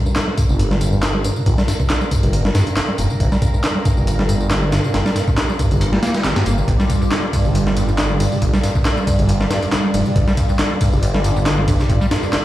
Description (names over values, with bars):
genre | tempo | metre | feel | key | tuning
breakbeat, breaks | 138 BPM | 4/4 | swing 54% on 16ths | G minor | A4 = 441 Hz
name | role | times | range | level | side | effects
phased analog pad | sustained chords | 0.0-12.4 s | G3 to D5 | -24 LUFS | right 1 dB | phaser, chorus, sidechain pumping
deep acid bass | riff | 0.1-12.4 s | G1 to Bb3 | -21 LUFS | equal | ping-pong delay
punchy analog drum machine | drums | 0.1-12.4 s | handclaps, ride cymbal, tambourine | -28 LUFS | equal | none
breakbeat sampler-style drum kit | drums | 0.2-12.4 s | hi-hat, kick drum, snare drum | -19 LUFS | equal | none
phased detuned saw bass | bass | 0.5-12.0 s | F1 to G2 | -18 LUFS | equal | phaser, tube saturation
room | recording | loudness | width
light reverb | played on a big sound system in a bare room, stone room reverb, vinyl crackle | -15 LUFS | side -14 dB against mid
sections
0.0-12.4 A section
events
none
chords
0.0 Gm7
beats
0.16 0.59 1.03 | 1.46 1.90 2.33 2.77 | 3.20 3.63 4.07 4.50 | 4.94 5.37 5.81 6.24 | 6.68 7.11 7.55 7.98 | 8.42 8.85 9.29 9.72 | 10.16 10.59 11.03 11.46 | 11.90 12.33